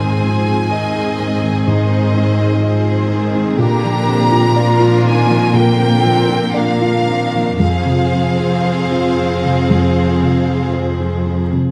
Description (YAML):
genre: cinematic, emotional film score for orchestra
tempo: 57-62 BPM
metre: 4/4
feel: rubato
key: unclear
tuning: A4 = 443 Hz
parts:
  - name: clear studio violin section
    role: melody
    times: 0.0-10.7 s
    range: Eb5 to Bb5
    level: -23 LUFS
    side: equal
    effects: none
  - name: rich studio violin section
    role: second line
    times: 0.0-11.6 s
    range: F4 to Eb5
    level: -25 LUFS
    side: equal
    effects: none
  - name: felt-muted upright piano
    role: accompaniment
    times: 0.0-11.7 s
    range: F2 to Eb5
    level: -19 LUFS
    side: equal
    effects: none
  - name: rich studio viola section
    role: accompaniment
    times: 0.0-11.6 s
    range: D3 to Eb4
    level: -24 LUFS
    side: equal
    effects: none
  - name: rich studio cello section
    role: bass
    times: 0.0-11.5 s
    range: F2 to Bb2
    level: -20 LUFS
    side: equal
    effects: none
room: light reverb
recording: close, detailed microphones, vinyl crackle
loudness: -15 LUFS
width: mono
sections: 0.0-11.7 A section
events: none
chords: 0.0 Ab; 3.6 Bbadd9; 7.6 Fm